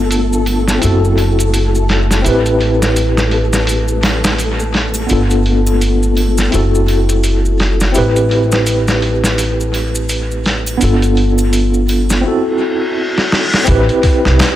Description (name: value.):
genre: trip hop.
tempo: 84 BPM.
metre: 4/4.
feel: swing 59% on 16ths.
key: A minor.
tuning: A4 = 438 Hz.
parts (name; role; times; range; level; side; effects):
tine electric piano; accompaniment; 0.0-14.6 s; B3 to B4; -16 LUFS; equal; overdrive, fast stereo tremolo, vintage 12-bit sampler grit, tape echo.
upright bass; bass; 0.0-14.4 s; F#1 to C2; -15 LUFS; equal; none.
flickering grainy texture; texture; 0.0-12.3 s; A3 to A4; -26 LUFS; equal; built-in reverb.
dusty soul sampler-style drum kit; drums; 0.1-14.6 s; hi-hat, kick drum, snare drum; -18 LUFS; equal; low-pass filter on hats, studio reverb, low-pass filter on snare, low-pass filter on kick, dub echo.
maracas and triangle; percussion; 0.1-12.2 s; none; -27 LUFS; equal; dub echo.
reverse cymbal; sound effects; 12.5-13.7 s; none; -20 LUFS; left 1 dB; none.
room: light reverb, digital ambience.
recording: echo-heavy mix.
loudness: -11 LUFS.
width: side -13 dB against mid.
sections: 0.0-13.7 A section.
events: reverse cymbal 12.5-13.7; drum fill 13.1-13.7.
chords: 0.0 G7; 0.8 F#m7b5; 2.2 Am7; 5.1 G7; 6.5 F#m7b5; 8.0 Am7; 10.8 G7; 12.2 Am6/C; 13.7 Am7.